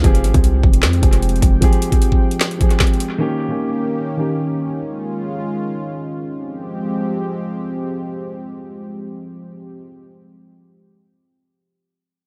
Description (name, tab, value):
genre	hip hop, trap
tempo	152 BPM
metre	4/4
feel	half-time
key	F minor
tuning	A4 = 439 Hz
part	dark concert grand piano	accompaniment	0.0-4.8 s	Eb3 to Ab4	-25 LUFS	equal	low-pass filter
part	warm analog pad	sustained chords	0.0-9.8 s	Eb3 to G5	-27 LUFS	equal	chorus
part	hard-hitting 808-style bass	bass	0.0-1.6 s	F1 to F2	-18 LUFS	equal	none
part	trap drum kit	drums	0.0-3.1 s	handclaps, hi-hat, kick drum, snare drum	-17 LUFS	equal	none
room	digital ambience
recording	echo-heavy mix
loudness	-18 LUFS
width	mono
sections	0.0-6.4 A section; 6.4-9.5 B section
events	none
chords	0.0 Fmadd9; 3.2 Eb7; 4.8 Dbadd9; 6.4 Fmadd9